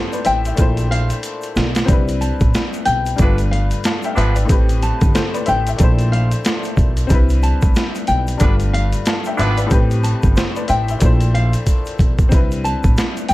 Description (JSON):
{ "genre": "hip hop, boom-bap hip-hop", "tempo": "92 BPM", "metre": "4/4", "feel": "swing 59% on 16ths", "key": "unclear", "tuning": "A4 = 440 Hz", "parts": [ { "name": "nylon-string guitar", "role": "melody", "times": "0.0-13.3 s", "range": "F5 to A5", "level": "-22 LUFS", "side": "left 2 dB", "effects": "high-pass filter, low-pass filter, slapback echo" }, { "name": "warm upright piano", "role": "accompaniment", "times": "0.0-13.3 s", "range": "G2 to A5", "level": "-23 LUFS", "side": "left 4 dB", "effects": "cassette tape, high-pass filter, low-pass filter" }, { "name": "boom bap sampler-style drum kit", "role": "drums", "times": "0.1-13.3 s", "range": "hi-hat, kick drum, snare drum", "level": "-17 LUFS", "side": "equal", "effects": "overdrive, vintage 12-bit sampler grit" }, { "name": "tube shaker", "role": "percussion", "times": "0.1-13.3 s", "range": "none", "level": "-40 LUFS", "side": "right 4 dB", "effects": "none" }, { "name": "upright bass", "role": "bass", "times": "0.3-13.3 s", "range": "G1 to C2", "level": "-18 LUFS", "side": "equal", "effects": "none" }, { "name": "warm horn section", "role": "stabs", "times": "3.2-4.4, 8.4-9.6 s", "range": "F3 to B4", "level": "-22 LUFS", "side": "right 1 dB", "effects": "high-pass filter, low-pass filter, slapback echo" } ], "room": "light reverb", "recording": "dark, warm production", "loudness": "-14 LUFS", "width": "side -17 dB against mid", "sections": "0.0-1.9 A section; 1.9-13.3 A section", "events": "drum fill 0.6-1.9, 11.7-12.3", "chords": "0.0 Am7; 0.6 Bbmaj9#11; 1.9 Cmaj9; 3.2 G9; 4.5 Am7; 5.8 Bbmaj9#11; 7.1 Cmaj9; 8.4 G9; 9.7 Am7; 11.0 Bbmaj9#11; 12.3 Cmaj9" }